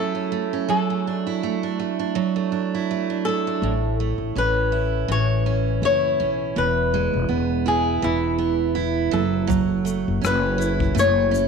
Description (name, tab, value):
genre	acoustic pop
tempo	82 BPM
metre	4/4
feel	swing 55% on 16ths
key	A major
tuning	A4 = 440 Hz
part	flamenco guitar	melody	0.0-11.5 s	E4 to C#5	-23 LUFS	left 2 dB	none
part	picked steel-string acoustic guitar	accompaniment	0.0-11.5 s	E2 to E4	-24 LUFS	right 9 dB	none
part	upright bass	bass	3.6-11.5 s	E1 to B1	-24 LUFS	left 3 dB	none
part	natural country drum kit	drums	9.5-11.5 s	kick drum, rim click, shaker	-27 LUFS	left 6 dB	none
room	moderate plate reverb, RT60 1.9 s, small room ambience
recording	1960s-style stereo with parts hard left and right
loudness	-20 LUFS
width	side -5 dB against mid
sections	0.0-3.6 A section; 3.6-11.5 B section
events	none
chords	0.0 F#m7; 0.7 Dadd9/F#; 3.6 A; 6.6 E; 9.1 F#m7